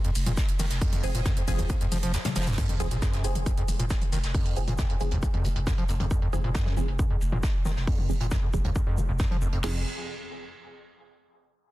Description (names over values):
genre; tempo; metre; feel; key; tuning
driving peak-time techno; 136 BPM; 4/4; straight; F minor; A4 = 441 Hz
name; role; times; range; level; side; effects
overdriven acid bass; riff; 0.0-9.8 s; Eb2 to Ab3; -31 LUFS; equal; analog chorus, sidechain pumping
techno drum kit; drums; 0.0-9.6 s; crash cymbal, hi-hat, ride cymbal, shaker, toms; -35 LUFS; left 1 dB; sidechain pumping on hats, low-pass filter on hats, sidechain pumping on toms, low-pass filter on toms, sidechain pumping on perc, low-pass filter on perc, sidechain pumping on cymbals, low-pass filter on cymbals, low-pass filter on room
vintage brush drum kit; drums; 0.1-9.6 s; hi-hat, shaker, snare drum; -39 LUFS; right 1 dB; sidechain pumping on hats, high-pass filter on hats, high-pass filter on snare, sidechain pumping on perc, high-pass filter on perc, high-pass filter on room
saturated sub bass; bass; 0.2-9.8 s; F1; -30 LUFS; equal; overdrive, sidechain pumping, low-pass filter
techno drum kit; drums; 0.4-9.7 s; crash cymbal, kick drum, snare drum; -28 LUFS; equal; none
filtered dub chord stab; stabs; 1.0-9.8 s; F3 to Ab4; -38 LUFS; right 2 dB; phaser, sidechain pumping, dub echo
sub drop; sound effects; 2.6-4.3 s; none; -37 LUFS; equal; none
room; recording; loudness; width
digital ambience; dense, heavily limited modern master; -24 LUFS; side -17 dB against mid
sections
0.0-2.6 A section; 2.6-9.6 B section; 9.6-11.4 C section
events
drop 0.0-2.6; kick drops out 2.1-2.6; drum fill 2.2-2.6; impact 2.6-4.3; filter sweep on drum 2.6-9.6; filter sweep on synth stab 2.6-9.6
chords
0.0 Fm; 9.6 N.C.